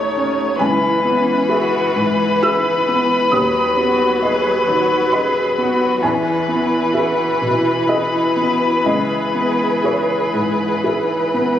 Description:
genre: neoclassical piano and strings.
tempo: 65 BPM.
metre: 3/4.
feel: uneven beats, rubato.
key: C# minor.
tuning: A4 = 443 Hz.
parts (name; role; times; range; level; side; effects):
muted violin; melody; 0.0-11.6 s; B4 to C#5; -18 LUFS; left 2 dB; none.
muted cello; second line; 0.0-11.3 s; C#4 to G#4; -25 LUFS; right 3 dB; none.
felt-muted upright piano; accompaniment; 0.0-11.6 s; C#2 to E6; -20 LUFS; equal; none.
muted viola; accompaniment; 0.0-11.6 s; E3 to A3; -24 LUFS; right 1 dB; none.
room: moderate scoring stage reverb, RT60 1.5 s.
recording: recorded on a phone in the room, club reverb, compression.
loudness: -15 LUFS.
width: side -10 dB against mid.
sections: 0.0-11.6 A section.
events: none.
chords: 0.0 D#m7b5; 0.6 C#m7; 3.3 B/D#; 6.0 Emaj7; 8.9 C#m7.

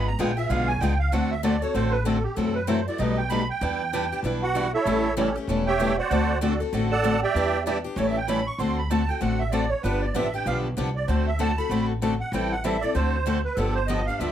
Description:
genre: acoustic string swing (jazz manouche).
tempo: 193 BPM.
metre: 4/4.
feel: swing 61% on 8ths.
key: D mixolydian.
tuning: A4 = 441 Hz.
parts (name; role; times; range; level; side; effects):
musette accordion; second line; 0.0-14.3 s; C#4 to C#6; -27 LUFS; right 4 dB; none.
picked steel-string acoustic guitar; accompaniment; 0.0-14.3 s; B2 to A4; -28 LUFS; left 5 dB; none.
picked swing-style acoustic guitar; accompaniment; 0.0-14.3 s; B2 to B4; -30 LUFS; right 4 dB; none.
upright bass; bass; 0.0-14.3 s; E1 to F#2; -28 LUFS; equal; none.
room: moderate studio ambience, RT60 0.5 s.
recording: none.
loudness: -22 LUFS.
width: side -10 dB against mid.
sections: 0.0-8.6 A section; 8.6-14.3 A section.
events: accordion solo 0.0-14.3.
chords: 0.0 G#dim7; 1.1 D7; 2.4 F#m7b5; 3.0 Baug7; 3.6 Em7; 4.9 A7; 6.1 D7; 7.3 Em7; 8.0 A7; 8.6 D7; 9.8 G7; 11.1 D7; 12.3 Am7; 13.0 D7; 13.6 G7.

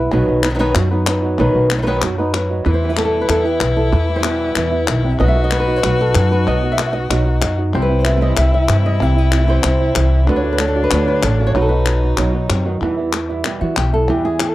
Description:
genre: flamenco.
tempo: 189 BPM.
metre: 4/4.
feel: straight.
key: unclear.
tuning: A4 = 440 Hz.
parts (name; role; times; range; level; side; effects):
flamenco guitar; melody; 0.0-14.5 s; B2 to E5; -19 LUFS; equal; none.
flamenco guitar; stabs; 0.0-14.4 s; B2 to F#4; -24 LUFS; right 6 dB; none.
upright bass; bass; 0.0-14.5 s; A1 to E3; -17 LUFS; equal; none.
palmas hand claps; percussion; 0.1-14.5 s; none; -23 LUFS; left 6 dB; none.
warm violin; second line; 2.7-12.7 s; D4 to F#4; -24 LUFS; left 4 dB; none.
room: little or no reverb.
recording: dry, close 1970s-style studio recording.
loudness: -14 LUFS.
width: side -16 dB against mid.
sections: 0.0-2.7 A section; 2.7-12.8 B section; 12.8-14.5 C section.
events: nylon-string guitar solo 12.8-14.5.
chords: 0.1 B; 2.7 Em; 5.2 B; 7.7 C; 10.3 D; 11.5 B; 12.8 Em.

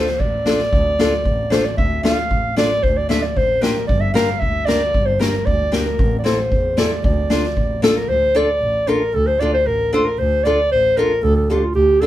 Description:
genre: klezmer.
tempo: 114 BPM.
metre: 2/4.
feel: straight.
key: D minor.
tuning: A4 = 440 Hz.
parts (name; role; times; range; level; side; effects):
dark clarinet; melody; 0.0-12.1 s; F4 to F5; -18 LUFS; right 1 dB; none.
nylon-string guitar; accompaniment; 0.0-12.1 s; C4 to C5; -20 LUFS; left 2 dB; none.
street-band drum kit; drums; 0.1-8.0 s; kick drum, snare drum; -20 LUFS; equal; none.
dark double bass; bass; 0.2-12.1 s; G1 to E2; -23 LUFS; right 1 dB; none.
room: moderate small room reverb, RT60 0.5 s.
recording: band playing live in one room.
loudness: -15 LUFS.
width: side -13 dB against mid.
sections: 0.0-8.1 A section; 8.1-12.1 A section.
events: none.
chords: 0.0 Dm; 3.9 Gm; 6.0 Am; 7.0 Dm.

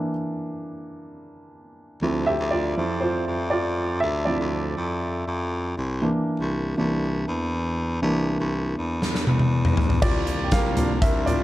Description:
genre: piano-driven pop.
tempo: 120 BPM.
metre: 4/4.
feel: straight.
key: C mixolydian.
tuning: A4 = 441 Hz.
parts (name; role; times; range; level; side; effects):
warm upright piano; accompaniment; 0.0-11.4 s; E3 to G5; -25 LUFS; right 1 dB; none.
bright baritone saxophone; bass; 2.0-11.4 s; C2 to F2; -26 LUFS; equal; none.
huge arena drum kit; drums; 9.0-11.4 s; crash cymbal, hi-hat, kick drum, snare drum, toms; -21 LUFS; left 1 dB; none.
warm studio string section; sustained chords; 10.0-11.4 s; C3 to F4; -33 LUFS; left 1 dB; none.
room: light reverb.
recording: dark, warm production.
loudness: -22 LUFS.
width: side -15 dB against mid.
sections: 0.0-10.0 A section; 10.0-11.4 B section.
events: upright piano solo 0.0-10.0, 10.0-11.4; drum fill 9.0-10.0.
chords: 0.0 Bb; 2.0 Dm7; 5.8 C7; 10.0 Bb/C.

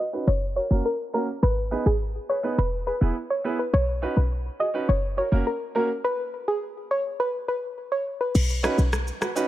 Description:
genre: dancehall.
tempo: 104 BPM.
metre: 4/4.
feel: straight.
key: B major.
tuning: A4 = 440 Hz.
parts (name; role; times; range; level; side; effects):
soft round pluck; melody; 0.0-8.3 s; G#4 to D#5; -27 LUFS; equal; chorus, low-pass filter.
warm grand piano; accompaniment; 0.0-9.5 s; A#3 to B4; -29 LUFS; right 3 dB; low-pass filter.
short 808-style bass; bass; 0.3-9.1 s; E1 to B1; -23 LUFS; equal; none.
organic electronic drum kit; drums; 8.4-9.5 s; crash cymbal, rim click, shaker; -28 LUFS; left 1 dB; none.
room: little or no reverb.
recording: none.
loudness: -23 LUFS.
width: side -14 dB against mid.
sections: 0.0-8.4 A section; 8.4-9.5 B section.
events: filter sweep 0.0-8.4; stop 6.0-8.4; kick muted 8.4-9.5.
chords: 0.3 F#; 1.4 G#m; 2.6 E; 3.7 Badd9; 4.9 F#; 6.0 N.C.; 8.4 Badd9.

